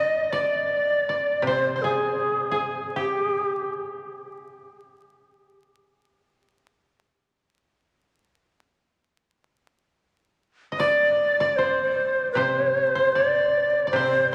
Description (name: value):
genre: japanese traditional, Japanese chamber music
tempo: 71-81 BPM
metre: 4/4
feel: rubato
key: unclear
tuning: A4 = 441 Hz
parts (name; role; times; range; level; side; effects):
- breathy bright long shakuhachi; melody; 0.0-3.7, 10.8-14.3 s; G4 to Eb5; -24 LUFS; equal; none
- koto; second line; 0.0-5.0, 10.7-14.3 s; G4 to Eb5; -32 LUFS; equal; none
- koto; accompaniment; 0.0-3.7, 12.4-14.3 s; C3 to D3; -35 LUFS; equal; none
room: wet church reverb, RT60 3.4 s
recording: vinyl crackle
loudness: -23 LUFS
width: mono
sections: 0.0-10.8 A section; 10.8-14.3 B section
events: none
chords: none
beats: 0.71 | 1.46 2.21 2.96 3.71 | 4.49 5.25 6.01 6.79 | 7.56 8.34 9.14 9.97 | 10.80 11.60 12.38 13.17 | 13.95